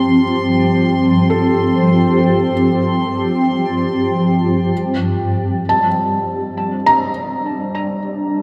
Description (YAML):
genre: ambient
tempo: free time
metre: none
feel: none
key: G minor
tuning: A4 = 441 Hz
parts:
  - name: shimmering ambient pad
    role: sustained chords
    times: 0.0-8.4 s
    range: G2 to A5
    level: -17 LUFS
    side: equal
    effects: chorus, built-in reverb, phaser
  - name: felt-muted upright piano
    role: arpeggios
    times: 0.0-8.4 s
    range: G3 to Bb5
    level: -22 LUFS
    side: equal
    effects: tape echo
  - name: dark studio violin section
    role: texture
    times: 0.0-4.7 s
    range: C6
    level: -28 LUFS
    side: equal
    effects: none
room: wet plate reverb, RT60 2.7 s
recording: dreamy mix soaked in reverb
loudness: -16 LUFS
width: mono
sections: 0.0-4.7 A section; 4.7-8.4 B section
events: filter sweep on ambient pad 4.7-8.4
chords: 0.0 F/G; 4.7 Gm